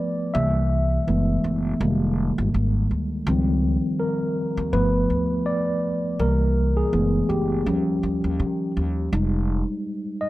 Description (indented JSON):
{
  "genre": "lo-fi hip hop",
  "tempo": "82 BPM",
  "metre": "4/4",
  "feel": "swing 56% on 16ths",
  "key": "unclear",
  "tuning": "A4 = 439 Hz",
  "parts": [
    { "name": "mellow tine electric piano", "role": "accompaniment", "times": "0.0-10.3 s", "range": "Eb3 to E5", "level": "-22 LUFS", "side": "equal", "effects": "fast stereo tremolo, cassette tape, low-pass filter" },
    { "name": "upright bass", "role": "bass", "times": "0.3-9.6 s", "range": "F1 to Eb3", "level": "-24 LUFS", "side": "equal", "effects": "none" }
  ],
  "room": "moderate plate reverb, RT60 2.6 s",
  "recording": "dark, warm production",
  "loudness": "-20 LUFS",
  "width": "side -17 dB against mid",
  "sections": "0.0-9.1 A section; 9.1-10.3 B section",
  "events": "tine electric piano solo 0.0-9.1, 9.1-10.3",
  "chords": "0.3 C7; 1.1 Gbm11; 1.8 Fm11; 3.3 Dbmaj9#11; 4.7 G9; 6.2 C7; 6.9 Gbm11; 7.7 Eb7; 9.1 Fm7"
}